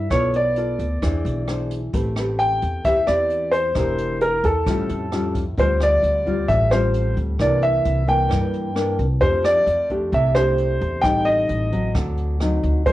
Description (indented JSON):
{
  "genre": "bossa nova",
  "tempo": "132 BPM",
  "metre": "4/4",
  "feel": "straight",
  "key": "A minor, D minor from 5.6 s",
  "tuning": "A4 = 439 Hz",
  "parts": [
    { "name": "warm grand piano", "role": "melody", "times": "0.0-12.9 s", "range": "A4 to G5", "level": "-20 LUFS", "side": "equal", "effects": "cassette tape" },
    { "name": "nylon-string guitar", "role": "accompaniment", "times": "0.0-12.9 s", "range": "G2 to D5", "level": "-25 LUFS", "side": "left 1 dB", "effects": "cassette tape" },
    { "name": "upright bass", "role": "bass", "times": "0.0-12.9 s", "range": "E1 to G2", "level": "-23 LUFS", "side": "equal", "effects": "none" },
    { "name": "jazz brush drum kit", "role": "drums", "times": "0.1-12.9 s", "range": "hi-hat, kick drum, rim click", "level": "-28 LUFS", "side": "equal", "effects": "cassette tape" }
  ],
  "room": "little or no reverb",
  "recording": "home recording on cassette",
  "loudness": "-18 LUFS",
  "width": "side -15 dB against mid",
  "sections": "0.0-5.6 A section; 5.6-12.9 B section",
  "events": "none",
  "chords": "0.1 Bm7b5; 1.0 E7b13; 1.9 Am9; 3.8 Em7b5; 4.7 Aaug7; 5.6 Dm7; 7.4 C9; 9.2 F69; 11.0 Am7b5; 11.9 D7b9"
}